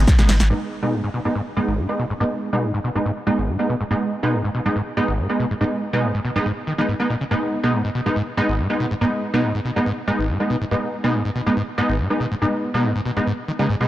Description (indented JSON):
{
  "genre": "driving peak-time techno",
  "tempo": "141 BPM",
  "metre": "4/4",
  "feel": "straight",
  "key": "G# minor",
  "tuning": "A4 = 440 Hz",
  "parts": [
    { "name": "overdriven acid bass", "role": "riff", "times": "0.0-13.9 s", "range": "G#1 to G3", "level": "-24 LUFS", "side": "equal", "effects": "lush chorus, sidechain pumping, analog delay" },
    { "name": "rave stab", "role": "stabs", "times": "0.0-13.9 s", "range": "G#3 to D#4", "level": "-22 LUFS", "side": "right 1 dB", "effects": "chorus, built-in reverb, sidechain pumping, analog delay" },
    { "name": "saturated sub bass", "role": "bass", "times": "0.0-0.5 s", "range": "G#1", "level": "-17 LUFS", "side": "equal", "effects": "overdrive, sidechain pumping, low-pass filter" },
    { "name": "techno drum kit", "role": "drums", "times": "0.1-0.5 s", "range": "hi-hat, ride cymbal, shaker, snare drum", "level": "-24 LUFS", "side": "equal", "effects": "low-pass filter on hats, low-pass filter on cymbals, low-pass filter on perc, low-pass filter on snare, low-pass filter on room" }
  ],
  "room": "light reverb",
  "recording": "dry, gritty hardware recording",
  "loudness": "-19 LUFS",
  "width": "side -14 dB against mid",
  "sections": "0.5-13.9 A section",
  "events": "drum fill 0.0-0.5; filter sweep on acid bass 0.5-13.9; filter sweep on synth stab 0.5-13.9",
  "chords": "0.0 G#m",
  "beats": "0.08 | 0.50 0.93 1.35 1.78 | 2.20 2.63 3.06 3.48 | 3.91 4.33 4.76 5.18 | 5.61 6.03 6.46 6.88 | 7.31 7.74 8.16 8.59 | 9.01 9.44 9.86 10.29 | 10.71 11.14 11.57 11.99 | 12.42 12.84 13.27 13.69"
}